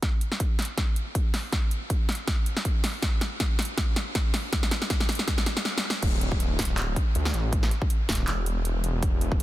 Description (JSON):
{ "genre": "future bass", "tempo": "160 BPM", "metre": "4/4", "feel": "swing 55% on 16ths, half-time", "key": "unclear", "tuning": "A4 = 440 Hz", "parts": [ { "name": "big-room dance drum kit", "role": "drums", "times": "0.0-9.4 s", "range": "crash cymbal, handclaps, hi-hat, snare drum", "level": "-29 LUFS", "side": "equal", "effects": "none" }, { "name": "electronic kick drum", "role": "drums", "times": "0.0-9.4 s", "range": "none", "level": "-26 LUFS", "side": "equal", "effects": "none" }, { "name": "wide detuned saw bass", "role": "bass", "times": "6.0-9.4 s", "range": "D1 to D2", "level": "-27 LUFS", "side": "equal", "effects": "chorus, sidechain pumping" } ], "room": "digital ambience", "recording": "dense, heavily limited modern master", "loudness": "-24 LUFS", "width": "side -15 dB against mid", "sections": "0.0-6.0 A section; 6.0-9.4 B section", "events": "build-up 0.0-6.0; drum fill 0.0-5.7, 5.7-6.0; drop 6.0-9.4", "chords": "none" }